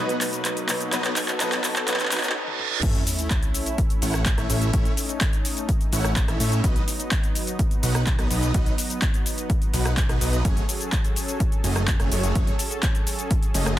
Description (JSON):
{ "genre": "EDM, festival progressive house", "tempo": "126 BPM", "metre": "4/4", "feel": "straight", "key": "unclear", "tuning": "A4 = 440 Hz", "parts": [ { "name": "bright concert grand piano", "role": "accompaniment", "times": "0.0-2.9 s", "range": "B2 to B4", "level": "-30 LUFS", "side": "left 2 dB", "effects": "sidechain pumping, tape echo" }, { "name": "lush unison pad", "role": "sustained chords", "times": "0.0-13.8 s", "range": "B2 to B4", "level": "-32 LUFS", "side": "equal", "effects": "chorus, sidechain pumping" }, { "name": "supersaw chords", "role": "riff", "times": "0.0-13.7 s", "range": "F#3 to F#5", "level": "-29 LUFS", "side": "right 1 dB", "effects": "lush chorus, sidechain pumping, tape echo" }, { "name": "riser, reverse cymbal and sub drop", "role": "sound effects", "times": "0.1-4.7 s", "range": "none", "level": "-31 LUFS", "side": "right 2 dB", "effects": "none" }, { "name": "big-room dance drum kit", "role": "drums", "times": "0.1-13.8 s", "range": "crash cymbal, handclaps, hi-hat, rim click, shaker, toms", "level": "-27 LUFS", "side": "equal", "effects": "overdrive" }, { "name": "fat analog bass", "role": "bass", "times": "2.8-13.8 s", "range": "F#1 to A2", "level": "-24 LUFS", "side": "equal", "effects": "sidechain pumping" }, { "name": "electronic kick drum", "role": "drums", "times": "2.8-13.4 s", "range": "none", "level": "-23 LUFS", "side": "equal", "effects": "none" } ], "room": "light reverb", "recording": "dense, heavily limited modern master, high-pass filter", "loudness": "-21 LUFS", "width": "side -13 dB against mid", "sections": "0.0-2.8 A section; 2.8-13.8 B section", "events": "build-up 0.0-2.8; drum fill 0.0-2.4, 2.5-2.8; reverse cymbal 1.9-2.8; break 2.4-2.8; drop 2.8-13.8; impact 2.8-4.7", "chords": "0.0 B; 2.8 A; 6.6 B; 10.4 F#madd9" }